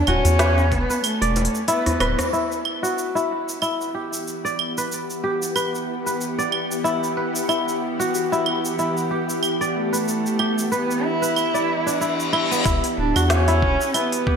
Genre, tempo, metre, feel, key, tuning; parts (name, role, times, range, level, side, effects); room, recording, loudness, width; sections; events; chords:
organic downtempo; 93 BPM; 4/4; swing 56% on 16ths; E minor; A4 = 440 Hz
dark cello; melody; 0.0-2.2, 9.8-14.4 s; A3 to E4; -24 LUFS; right 1 dB; digital delay, shimmer reverb
kora; arpeggios; 0.0-14.4 s; B3 to D5; -24 LUFS; equal; low-pass filter, ping-pong delay, shimmer reverb
round analog bass; bass; 0.0-2.2, 12.7-13.8 s; D1 to E2; -20 LUFS; equal
organic electronic drum kit; drums; 0.1-14.2 s; claves, hi-hat, rim click, shaker, snare drum; -26 LUFS; right 2 dB; overdrive, gated reverb
djembe; percussion; 0.1-2.3 s; -28 LUFS; left 1 dB
electronic kick drum; drums; 0.7-0.9, 12.7-14.4 s; -23 LUFS; equal
bowed-like drone; sustained chords; 3.9-14.4 s; E3 to F#5; -27 LUFS; left 1 dB; built-in reverb, sidechain pumping, shimmer reverb
reverse cymbal; sound effects; 11.9-12.7 s; -28 LUFS; left 5 dB
wet plate reverb, RT60 2.0 s, digital ambience; bright 1980s-style digital production; -19 LUFS; side -6 dB against mid
0.0-2.3 A section; 2.3-12.7 B section; 12.7-14.4 C section
kick drops out 1.7-2.3; drum fill 1.8-2.3; band accent 2.2-2.5; filter sweep on synth drone 2.3-12.7; reverse cymbal 11.9-12.7
0.0 Bm; 2.3 Em7